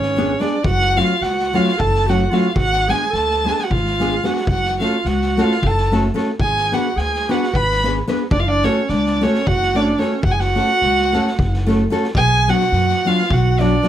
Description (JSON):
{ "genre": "balkan folk, Balkan wedding band", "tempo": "219 BPM (eighths)", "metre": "7/8", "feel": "straight", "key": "F# harmonic minor", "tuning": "A4 = 439 Hz", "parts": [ { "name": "dark violin", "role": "melody", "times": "0.0-13.9 s", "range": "C#5 to B5", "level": "-20 LUFS", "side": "equal", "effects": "none" }, { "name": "warm clarinet", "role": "second line", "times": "0.0-13.9 s", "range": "C#4 to B4", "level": "-23 LUFS", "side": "right 5 dB", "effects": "none" }, { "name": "upright bass", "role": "bass", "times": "0.0-13.8 s", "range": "F#1 to F#2", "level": "-20 LUFS", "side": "equal", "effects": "none" }, { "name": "street-band drum kit", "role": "percussion", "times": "0.0-13.9 s", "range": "kick drum, snare drum", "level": "-26 LUFS", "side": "left 1 dB", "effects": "none" }, { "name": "nylon-string guitar", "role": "accompaniment", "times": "0.2-13.9 s", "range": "F#3 to B4", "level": "-19 LUFS", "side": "left 1 dB", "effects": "none" } ], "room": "light reverb", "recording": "none", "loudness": "-15 LUFS", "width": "side -11 dB against mid", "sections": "0.0-12.2 A section; 12.2-13.9 B section", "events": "none", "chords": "0.0 G#dim; 0.6 F#m; 2.6 G#dim; 4.5 F#m; 6.4 G#dim; 8.3 F#m; 12.2 Bm" }